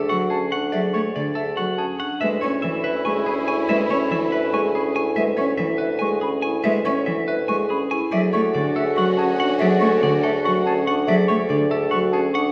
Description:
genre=classical, minimalist pattern music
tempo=284 BPM (eighths)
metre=7/8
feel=straight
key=D lydian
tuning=A4 = 440 Hz
part: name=clean electric guitar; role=melody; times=0.0-12.5 s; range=G#4 to G#5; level=-31 LUFS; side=equal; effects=none
part: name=vibraphone with soft mallets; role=arpeggios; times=0.0-12.5 s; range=C#4 to C#5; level=-26 LUFS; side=equal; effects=none
part: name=warm bassoon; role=bass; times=0.0-12.5 s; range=D2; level=-28 LUFS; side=equal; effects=none
part: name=clear cello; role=accompaniment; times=0.1-12.1 s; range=D3 to C#4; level=-28 LUFS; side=equal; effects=none
part: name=mellow concert flute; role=arpeggios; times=0.1-12.4 s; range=E5 to C#6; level=-30 LUFS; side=equal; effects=none
part: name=mellow soprano saxophone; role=second line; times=2.2-4.9, 8.1-10.8 s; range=E4 to F#4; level=-31 LUFS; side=equal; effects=none
part: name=rich studio string section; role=sustained chords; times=2.2-4.9, 8.1-10.8 s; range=C#4 to F#4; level=-33 LUFS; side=equal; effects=none
room=wet scoring stage reverb, RT60 1.6 s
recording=heard from further back in the room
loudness=-21 LUFS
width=mono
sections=0.0-12.5 A section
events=none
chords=0.0 Dmaj7; 2.2 C#m7/D; 8.1 Dmaj7

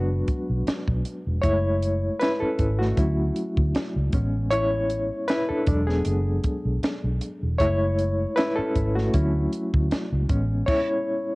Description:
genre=lush 1970s-style soul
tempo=78 BPM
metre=4/4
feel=swing 54% on 16ths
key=F# minor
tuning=A4 = 439 Hz
part: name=barky reed electric piano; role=accompaniment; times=0.0-11.3 s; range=F#3 to C#5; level=-25 LUFS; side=left 1 dB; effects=overdrive, fast tremolo
part: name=vintage muted fingered electric bass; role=bass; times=0.0-10.6 s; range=E1 to D2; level=-24 LUFS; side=equal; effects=none
part: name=compact cocktail drum kit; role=drums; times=0.3-10.9 s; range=crash cymbal, hi-hat, kick drum, snare drum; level=-26 LUFS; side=equal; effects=cassette tape
room=light reverb, small room ambience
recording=home recording on cassette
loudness=-22 LUFS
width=side -24 dB against mid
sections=0.0-11.3 A section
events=reed electric piano solo 0.0-11.3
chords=0.0 E9 (rootless); 1.4 F#m9; 3.0 Dmaj9; 4.1 Amaj7; 5.7 E9; 7.6 F#m9; 9.1 Dmaj9; 10.3 Amaj7

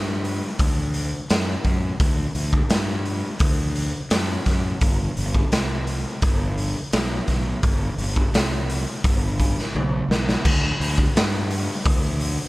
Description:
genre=blues rock power trio and southern rock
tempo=85 BPM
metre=4/4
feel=straight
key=unclear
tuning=A4 = 440 Hz
part: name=fuzz fingered electric bass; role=bass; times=0.0-12.4 s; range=G1 to G2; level=-25 LUFS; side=equal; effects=overdrive
part: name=raw garage drum kit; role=drums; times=0.2-12.4 s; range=crash cymbal, hi-hat, kick drum, snare drum, toms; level=-21 LUFS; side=equal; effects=none
room=little or no reverb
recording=none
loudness=-20 LUFS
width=side -20 dB against mid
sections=0.0-10.5 A section; 10.5-12.5 B section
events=drum fill 9.8-10.5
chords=none

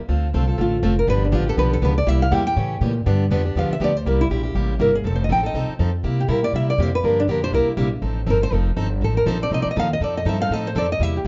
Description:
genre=acoustic string swing (jazz manouche)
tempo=242 BPM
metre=4/4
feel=swing 57% on 8ths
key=unclear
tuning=A4 = 440 Hz
part: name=picked plugged-in steel-string acoustic guitar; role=accompaniment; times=0.1-11.3 s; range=C3 to A4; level=-27 LUFS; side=equal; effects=none
part: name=upright bass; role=bass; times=0.1-11.3 s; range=F1 to C3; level=-24 LUFS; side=equal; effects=none
part: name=nylon-string guitar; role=melody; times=0.6-11.3 s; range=D4 to G5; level=-24 LUFS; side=equal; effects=none
room=light reverb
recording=dark, warm production, nothing above 7.6 kHz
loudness=-20 LUFS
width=mono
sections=0.0-4.1 A section; 4.1-11.3 A section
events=nylon-string guitar solo 0.0-11.3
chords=0.1 Dm7; 1.1 G7; 2.1 C7; 2.6 A7b9; 3.1 G7; 4.1 C7; 5.0 F7; 6.0 C7; 7.0 Gm7; 7.5 C7; 8.0 F7

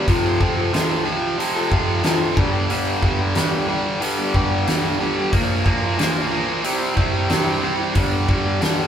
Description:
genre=quiet-loud alternative rock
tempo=91 BPM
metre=4/4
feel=straight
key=unclear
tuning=A4 = 436 Hz
part: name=electric guitar through a small old amp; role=arpeggios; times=0.0-8.9 s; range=G2 to Bb4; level=-25 LUFS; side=left 3 dB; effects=none
part: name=distorted electric guitar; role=riff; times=0.0-8.9 s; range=F2 to C4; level=-21 LUFS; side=right 1 dB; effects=overdrive
part: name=huge arena drum kit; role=drums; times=0.1-8.8 s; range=hi-hat, kick drum, snare drum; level=-21 LUFS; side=equal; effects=none
room=light reverb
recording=band playing live in one room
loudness=-17 LUFS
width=side -9 dB against mid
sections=0.0-8.9 A section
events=none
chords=0.1 F; 2.4 G; 5.3 Bb; 6.6 C; 8.0 G

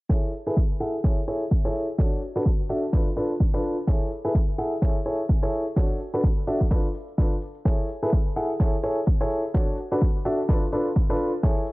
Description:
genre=piano house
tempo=127 BPM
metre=4/4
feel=swing 58% on 16ths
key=A major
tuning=A4 = 440 Hz
part: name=clear grand piano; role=riff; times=0.1-11.6 s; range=D4 to F#5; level=-26 LUFS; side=equal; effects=sidechain pumping, low-pass filter, tape echo
part: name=electronic kick drum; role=drums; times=0.1-11.5 s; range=none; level=-22 LUFS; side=equal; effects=overdrive
part: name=tambourine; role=percussion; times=0.1-11.7 s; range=none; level=-64 LUFS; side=right 5 dB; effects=none
part: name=electronic hi-hat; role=drums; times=0.3-11.7 s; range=none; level=-65 LUFS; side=left 4 dB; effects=none
room=small room ambience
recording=low-pass filter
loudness=-22 LUFS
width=side -22 dB against mid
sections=0.1-11.7 A section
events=filter sweep on grand piano 0.1-11.7; filter sweep 0.1-11.7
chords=0.1 Amaj7; 2.0 Dmaj7; 2.9 Dm6; 3.9 Amaj7; 5.8 Dmaj7; 6.7 Dm6; 7.7 Amaj7; 9.5 Dmaj7; 10.5 Dm6

